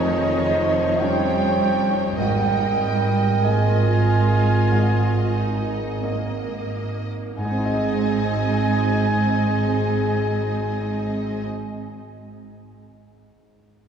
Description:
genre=cinematic, emotional film score for orchestra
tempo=43-55 BPM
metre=4/4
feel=rubato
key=Ab major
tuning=A4 = 444 Hz
part: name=rich studio violin section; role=melody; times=0.0-11.4 s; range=Db5 to Eb5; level=-33 LUFS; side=left 2 dB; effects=none
part: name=concert flute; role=second line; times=0.0-11.4 s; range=Eb5 to Ab5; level=-26 LUFS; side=right 4 dB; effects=none
part: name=mellow clarinet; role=second line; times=0.0-6.7 s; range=Ab4 to C5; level=-30 LUFS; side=right 2 dB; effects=none
part: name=rich studio violin section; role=second line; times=0.0-11.4 s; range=Eb5 to Ab5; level=-33 LUFS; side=left 1 dB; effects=none
part: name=rich studio viola section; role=accompaniment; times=0.0-11.4 s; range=F3 to F4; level=-30 LUFS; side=right 3 dB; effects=none
part: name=warm grand piano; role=accompaniment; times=0.0-13.9 s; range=F1 to Eb5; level=-28 LUFS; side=left 1 dB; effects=none
part: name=dark French horn section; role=sustained chords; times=0.0-11.4 s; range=Eb3 to Ab3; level=-29 LUFS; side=left 4 dB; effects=none
part: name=clear studio double bass section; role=bass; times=0.0-11.4 s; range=Ab1 to F2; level=-23 LUFS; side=right 2 dB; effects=none
part: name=rich studio cello section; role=bass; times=0.0-11.4 s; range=Eb3 to Ab3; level=-29 LUFS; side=right 3 dB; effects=none
room=wet church reverb, RT60 3.6 s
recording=recorded in a church or concert hall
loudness=-19 LUFS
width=side -7 dB against mid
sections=0.0-7.4 A section; 7.4-12.6 B section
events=slowing down 0.0-7.4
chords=0.0 Dbadd9/F; 2.2 Absus2; 7.4 Ab

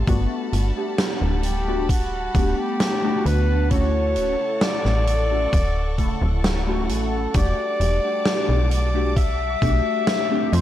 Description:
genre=vaporwave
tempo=66 BPM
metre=4/4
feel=straight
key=E dorian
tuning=A4 = 440 Hz
part: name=warbly lo-fi synth keys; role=accompaniment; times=0.0-10.6 s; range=C#3 to A4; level=-26 LUFS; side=left 1 dB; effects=phaser, ensemble chorus
part: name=bright studio string section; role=sustained chords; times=0.0-10.6 s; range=G3 to D6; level=-33 LUFS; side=left 2 dB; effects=none
part: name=slap-like FM bass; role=bass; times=0.0-10.6 s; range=D1 to F2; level=-22 LUFS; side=equal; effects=tube saturation
part: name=electronic kick drum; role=drums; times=0.1-9.8 s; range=none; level=-21 LUFS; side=equal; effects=none
part: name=huge arena drum kit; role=drums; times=0.1-10.6 s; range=hi-hat, snare drum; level=-27 LUFS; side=right 1 dB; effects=none
part: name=mellow flugelhorn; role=melody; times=1.4-10.6 s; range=F#4 to E5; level=-25 LUFS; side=left 1 dB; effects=tape echo
room=small room ambience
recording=dry, gritty hardware recording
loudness=-19 LUFS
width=side -12 dB against mid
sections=0.0-10.6 A section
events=none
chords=0.1 Gmaj7; 3.7 Dmaj7; 7.3 Em11

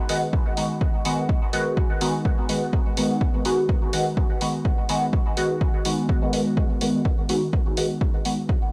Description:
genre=dub techno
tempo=125 BPM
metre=4/4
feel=swing 55% on 16ths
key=G# minor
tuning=A4 = 443 Hz
part: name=resonant sweep polysynth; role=stabs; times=0.1-8.4 s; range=D#3 to F#4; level=-26 LUFS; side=equal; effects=chorus, phaser, cassette tape, sidechain pumping, dub echo
part: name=electronic hi-hat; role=drums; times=0.1-8.4 s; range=none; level=-33 LUFS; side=equal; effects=overdrive
part: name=electronic kick drum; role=drums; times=0.3-8.6 s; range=none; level=-25 LUFS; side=equal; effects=overdrive
room=digital ambience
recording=dry, gritty hardware recording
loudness=-23 LUFS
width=mono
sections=0.0-8.7 A section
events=filter sweep on analog polysynth 0.0-8.7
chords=0.0 G#m7

